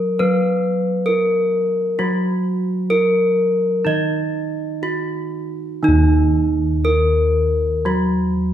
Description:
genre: Javanese gamelan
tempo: 59-69 BPM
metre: 4/4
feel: straight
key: unclear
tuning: A4 = 439 Hz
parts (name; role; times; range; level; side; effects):
- gamelan-type bronze metallophone; melody; 0.0-8.5 s; Eb4 to Eb5; -18 LUFS; equal; none
- gamelan-type bronze metallophone; accompaniment; 0.0-8.5 s; Eb3 to Eb4; -23 LUFS; right 1 dB; none
- gamelan-type bossed gongs; bass; 0.0-8.5 s; Eb2 to Gb4; -21 LUFS; equal; none
room: moderate large studio reverb, RT60 1.4 s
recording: band playing live in one room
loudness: -16 LUFS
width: side -10 dB against mid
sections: 0.0-5.8 A section; 5.8-8.5 B section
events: none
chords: none

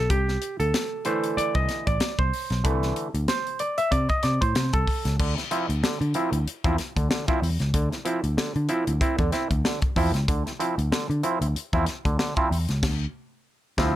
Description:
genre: funk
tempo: 94 BPM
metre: 4/4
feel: swing 56% on 16ths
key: unclear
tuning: A4 = 441 Hz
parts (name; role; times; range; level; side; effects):
- overdriven clav; stabs; 0.0-14.0 s; D3 to E5; -26 LUFS; right 2 dB; phaser, plate reverb
- vintage muted picked electric bass; bass; 0.0-14.0 s; A1 to D3; -25 LUFS; equal; none
- crisp fusion drum kit; drums; 0.1-14.0 s; crash cymbal, hi-hat, kick drum, snare drum; -27 LUFS; left 1 dB; none
room: light reverb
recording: none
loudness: -22 LUFS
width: side -13 dB against mid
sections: 0.0-5.2 A section; 5.2-14.0 B section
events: clav solo 0.0-5.2; band accent 12.8-14.0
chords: 0.1 C6; 5.2 Dm9

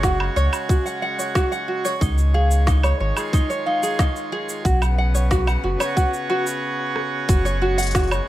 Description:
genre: folktronica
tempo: 91 BPM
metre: 4/4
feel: straight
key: unclear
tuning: A4 = 440 Hz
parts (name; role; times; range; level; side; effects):
- marimba with soft mallets; second line; 0.0-6.6 s; E#5 to F#5; -28 LUFS; left 1 dB; tape echo
- accordion; sustained chords; 0.0-8.3 s; C#3 to C#5; -27 LUFS; right 1 dB; none
- tenor ukulele; arpeggios; 0.0-8.3 s; D#4 to F#5; -24 LUFS; right 1 dB; tape echo
- warm sub bass; bass; 0.0-8.2 s; F#1 to C#2; -20 LUFS; equal; tube saturation
- electronic kick drum; drums; 0.0-8.1 s; none; -20 LUFS; equal; none
- organic electronic drum kit; drums; 0.0-8.2 s; cabasa, hi-hat, rim click, snare drum, woodblock; -28 LUFS; right 1 dB; none
room: light reverb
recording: vinyl crackle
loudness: -18 LUFS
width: side -14 dB against mid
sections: 0.0-7.3 A section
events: break 6.6-7.3; drum fill 7.0-7.3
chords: 0.0 F#sus2; 2.0 C#add9; 4.7 Bsus2; 7.3 F#sus2

